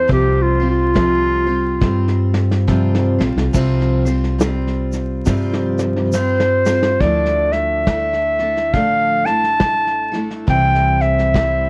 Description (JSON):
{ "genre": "acoustic folk duo or small band", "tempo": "69 BPM", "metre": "4/4", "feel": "swing 60% on 8ths", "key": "unclear", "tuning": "A4 = 440 Hz", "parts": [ { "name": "warm clarinet", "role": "melody", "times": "0.0-11.7 s", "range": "F4 to A5", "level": "-19 LUFS", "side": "equal", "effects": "plate reverb" }, { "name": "picked steel-string acoustic guitar", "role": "accompaniment", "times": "0.0-11.7 s", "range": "C3 to C5", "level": "-23 LUFS", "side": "equal", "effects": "plate reverb" }, { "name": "upright bass", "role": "bass", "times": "0.0-11.7 s", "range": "A1 to G2", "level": "-22 LUFS", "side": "equal", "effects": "transformer saturation" }, { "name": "soft brush drum kit", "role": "drums", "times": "0.1-11.6 s", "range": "crash cymbal, kick drum, snare drum", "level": "-23 LUFS", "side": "equal", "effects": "vintage 12-bit sampler grit" }, { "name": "egg shaker", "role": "percussion", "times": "3.5-6.8 s", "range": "none", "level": "-39 LUFS", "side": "equal", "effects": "none" } ], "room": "light reverb", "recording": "worn, warbling old tape, cassette tape, vinyl crackle, warbly pitch drift", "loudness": "-17 LUFS", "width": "mono", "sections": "0.0-3.5 A section; 3.5-7.0 B section; 7.0-11.7 C section", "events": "clarinet solo 0.0-3.5; drum fill 1.8-3.5, 5.3-7.0", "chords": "0.1 Csus4; 7.0 Dmadd9; 10.5 C", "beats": "| 0.10 0.96 1.82 2.69 | 3.55 4.41 5.28 6.14 | 7.01 7.87 8.74 9.61 | 10.47 11.34" }